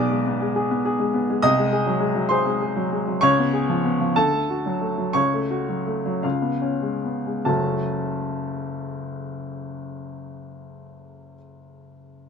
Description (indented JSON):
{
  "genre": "classical, virtuoso piano study",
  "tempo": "46-69 BPM (dotted quarters)",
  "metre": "6/8",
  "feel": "rubato",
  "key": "F# minor",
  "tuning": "A4 = 439 Hz",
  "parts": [
    { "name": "warm baby grand piano", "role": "solo", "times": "0.0-12.3 s", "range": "F#1 to D#6", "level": "-21 LUFS", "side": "equal", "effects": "none" }
  ],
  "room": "light reverb",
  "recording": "close, detailed microphones",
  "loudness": "-20 LUFS",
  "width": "side -6 dB against mid",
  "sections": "0.0-7.5 A section; 7.5-12.3 B section",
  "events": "slowing down 2.3-7.5",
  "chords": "0.0 G#dim/B; 1.4 G#7/B#; 3.2 C#7; 4.2 D; 5.2 F#m/C#; 6.2 C#7; 7.5 F#m"
}